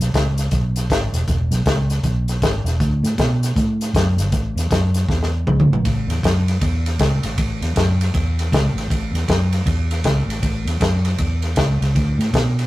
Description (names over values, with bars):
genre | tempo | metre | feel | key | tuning
electric blues shuffle | 158 BPM | 4/4 | swing 64% on 8ths | A major | A4 = 439 Hz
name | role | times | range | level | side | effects
vintage muted fingered electric bass | bass | 0.0-12.7 s | E1 to B2 | -19 LUFS | equal | none
compact cocktail drum kit | drums | 0.0-12.6 s | hi-hat, kick drum, ride cymbal, snare drum, toms | -20 LUFS | equal | none
room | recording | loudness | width
moderate studio reverb, RT60 0.5 s | rough rehearsal-room recording, tube saturation | -16 LUFS | side -17 dB against mid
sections
0.0-5.8 A section; 5.8-12.7 B section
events
drum fill 5.1-5.8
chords
none